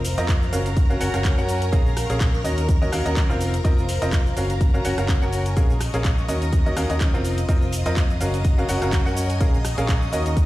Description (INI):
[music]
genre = piano house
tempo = 125 BPM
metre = 4/4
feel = swing 55% on 16ths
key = Bb minor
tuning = A4 = 440 Hz
[part]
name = string machine, violins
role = sustained chords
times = 0.0-10.5 s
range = Bb4 to Eb6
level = -33 LUFS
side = equal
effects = ensemble chorus, sidechain pumping
[part]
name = fingered electric bass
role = bass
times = 0.0-10.5 s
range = F1 to Gb2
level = -24 LUFS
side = equal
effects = sidechain pumping
[part]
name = house drum kit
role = drums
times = 0.0-10.5 s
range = cabasa, handclaps, hi-hat, rim click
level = -32 LUFS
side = equal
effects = none
[part]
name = warm studio string section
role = texture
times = 0.0-10.5 s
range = Eb4 to Db6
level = -33 LUFS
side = left 1 dB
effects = sidechain pumping
[part]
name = bright upright piano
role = riff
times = 0.2-10.3 s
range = C4 to Gb5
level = -26 LUFS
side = equal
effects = sidechain pumping, tape echo
[part]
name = electronic kick drum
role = drums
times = 0.3-10.5 s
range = none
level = -20 LUFS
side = equal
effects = none
[sound]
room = light reverb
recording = played on a big sound system in a bare room, stone room reverb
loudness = -19 LUFS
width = side -16 dB against mid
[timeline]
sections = 0.0-10.5 A section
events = none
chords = 0.0 F7sus4; 0.5 Gbmaj7; 1.7 Bbm7; 2.4 Ebm7; 3.4 F7sus4; 4.4 Gbmaj7; 5.6 Bbm7; 6.3 Ebm7; 7.2 F7sus4; 8.2 Gbmaj7; 9.4 Bbm7